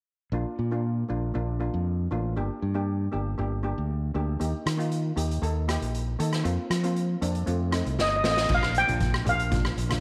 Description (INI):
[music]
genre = calypso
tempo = 117 BPM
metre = 4/4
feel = straight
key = Bb major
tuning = A4 = 442 Hz
[part]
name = steel pan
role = accompaniment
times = 0.3-10.0 s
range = A3 to A4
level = -35 LUFS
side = equal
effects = none
[part]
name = modern bright fingered electric bass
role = bass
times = 0.3-10.0 s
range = G1 to F3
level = -30 LUFS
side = equal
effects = none
[part]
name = street-band drum kit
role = drums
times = 4.4-10.0 s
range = crash cymbal, hi-hat, kick drum, rim click, snare drum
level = -33 LUFS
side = equal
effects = none
[part]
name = steel pan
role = melody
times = 8.0-10.0 s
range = Eb5 to G5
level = -27 LUFS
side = equal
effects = slapback echo
[part]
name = congas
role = percussion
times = 8.5-10.0 s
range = none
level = -37 LUFS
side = equal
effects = none
[sound]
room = light reverb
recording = none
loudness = -27 LUFS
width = mono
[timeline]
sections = 0.3-8.5 A section; 8.5-10.0 B section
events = drum fill 8.0-8.5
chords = 0.3 Bb; 2.4 Gm; 4.4 Eb; 6.5 Fsus4; 7.5 F; 8.5 Bb